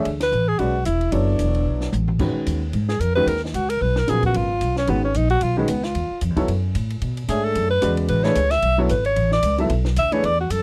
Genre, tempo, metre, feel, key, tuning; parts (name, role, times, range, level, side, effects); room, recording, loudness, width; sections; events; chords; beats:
modal jazz; 224 BPM; 4/4; swing 58% on 8ths; A4 = 442 Hz
warm upright piano; accompaniment; 0.0-10.2 s; C#3 to E5; -27 LUFS; equal
upright bass; bass; 0.0-10.6 s; E1 to B2; -24 LUFS; equal
compact cocktail drum kit; drums; 0.1-10.6 s; crash cymbal, hi-hat, kick drum, ride cymbal, snare drum, toms; -36 LUFS; equal
clear alto saxophone; melody; 0.2-10.6 s; G#3 to E5; -24 LUFS; equal
little or no reverb; dry, close 1970s-style studio recording; -21 LUFS; mono
0.0-2.2 A section; 2.2-10.6 B section
band accent 0.2; drum fill 1.7-2.2; alto saxophone solo 2.2-10.6
0.0 Bm11; 2.2 G#m11; 6.5 Bm11
| 0.05 0.32 0.59 0.86 | 1.12 1.39 1.66 1.93 | 2.20 2.47 2.73 3.00 | 3.27 3.54 3.81 4.07 | 4.34 4.61 4.88 5.15 | 5.41 5.68 5.95 6.22 | 6.49 6.75 7.02 7.29 | 7.56 7.83 8.09 8.36 | 8.63 8.90 9.16 9.43 | 9.70 9.97 10.24 10.50